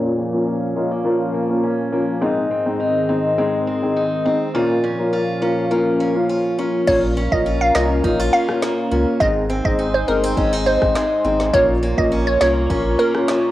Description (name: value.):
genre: dancehall.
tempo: 103 BPM.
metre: 4/4.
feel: straight.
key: Bb minor.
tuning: A4 = 440 Hz.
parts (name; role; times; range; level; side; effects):
dark baby grand piano; accompaniment; 0.0-13.3 s; Ab3 to F4; -20 LUFS; left 2 dB; low-pass filter, cassette tape.
hollow soft pad; sustained chords; 0.0-13.5 s; Ab2 to Db6; -26 LUFS; equal; chorus, sidechain pumping, low-pass filter, cassette tape.
picked steel-string acoustic guitar; arpeggios; 0.0-13.5 s; Ab2 to F4; -23 LUFS; equal; low-pass filter, cassette tape, analog delay.
glassy wavetable pluck; melody; 6.9-13.1 s; Bb4 to F5; -19 LUFS; right 1 dB; chorus, cassette tape.
warm sub bass; bass; 6.9-13.0 s; G1 to Db2; -23 LUFS; equal; none.
afro-pop drum kit; drums; 6.9-13.4 s; crash cymbal, finger snaps, kick drum, rim click, snare drum; -25 LUFS; equal; cassette tape.
room: moderate lush hall reverb, RT60 1.9 s, digital ambience.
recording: home recording on cassette.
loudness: -16 LUFS.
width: side -14 dB against mid.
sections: 0.0-6.9 A section; 6.9-13.5 B section.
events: filter sweep 0.0-6.9.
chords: 0.0 Bbm; 2.2 Ab; 4.5 Bbm; 9.2 Ab; 11.5 Bbm.